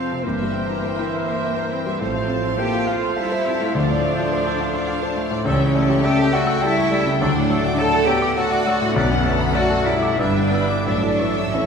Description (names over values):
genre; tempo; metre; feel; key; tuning
classical, romantic movement for piano and orchestra; 103 BPM; 3/4; rubato; D major from 5.5 s; A4 = 439 Hz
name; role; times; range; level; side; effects
clear grand piano; melody; 0.0-11.7 s; B1 to E6; -22 LUFS; left 2 dB; none
rich symphonic violin section; melody; 0.0-11.7 s; E5 to G5; -33 LUFS; left 3 dB; none
clear clarinet; second line; 0.0-11.7 s; Bb4 to A5; -29 LUFS; equal; none
clear symphonic violin section; second line; 0.0-11.7 s; C5 to E6; -32 LUFS; left 2 dB; none
mellow oboe; second line; 0.0-11.7 s; A4 to E5; -31 LUFS; equal; none
wooden flute; second line; 0.0-11.7 s; Bb4 to A5; -29 LUFS; left 2 dB; none
clear studio viola section; accompaniment; 0.0-11.7 s; A4 to C5; -31 LUFS; right 5 dB; none
warm bassoon; accompaniment; 0.0-11.7 s; E3 to G3; -30 LUFS; right 3 dB; none
mellow French horn section; sustained chords; 0.0-11.7 s; D3 to D4; -27 LUFS; left 2 dB; none
rich symphonic cello section; bass; 0.0-11.7 s; Bb3 to A4; -25 LUFS; right 2 dB; none
clear symphonic double bass section; bass; 0.2-11.4 s; G1 to D2; -29 LUFS; right 4 dB; none
timpani; percussion; 3.7-4.6, 10.9-11.7 s; A2 to D3; -31 LUFS; right 1 dB; none
room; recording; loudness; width
wet scoring stage reverb, RT60 1.9 s; minimal, uncompressed stereo recording; -17 LUFS; side -6 dB against mid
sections
0.0-11.7 A section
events
timpani fill 10.9-11.7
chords
0.2 C7/G; 2.0 F/A; 3.7 Dm7; 5.5 A7/C#; 7.2 D; 9.0 Bm7; 10.2 Em7/G; 10.9 A